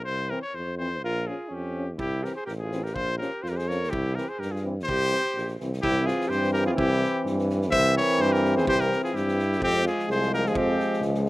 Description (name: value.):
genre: balkan folk, Balkan brass band.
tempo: 126 BPM.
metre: 2/4.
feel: swing 54% on 16ths.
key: C phrygian dominant.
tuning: A4 = 441 Hz.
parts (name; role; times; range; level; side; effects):
bright trumpet; melody; 0.0-11.0 s; G4 to E5; -28 LUFS; left 1 dB; slapback echo.
warm tuba; bass; 0.0-11.3 s; A1 to G2; -28 LUFS; equal; none.
clear euphonium; accompaniment; 0.3-11.3 s; E3 to F3; -32 LUFS; right 4 dB; slapback echo.
warm euphonium; accompaniment; 0.3-11.3 s; Ab3 to Db4; -30 LUFS; left 2 dB; none.
warm alto saxophone; second line; 1.0-11.0 s; C4 to C5; -30 LUFS; right 2 dB; none.
loose indie drum kit; percussion; 2.0-11.3 s; kick drum, snare drum; -39 LUFS; equal; none.
room: little or no reverb.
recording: none.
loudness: -23 LUFS.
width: side -18 dB against mid.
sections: 0.0-5.8 A section; 5.8-11.3 B section.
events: none.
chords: 0.1 C; 1.0 Bbm; 2.0 C; 3.0 Bbm; 3.9 C; 9.6 Fm.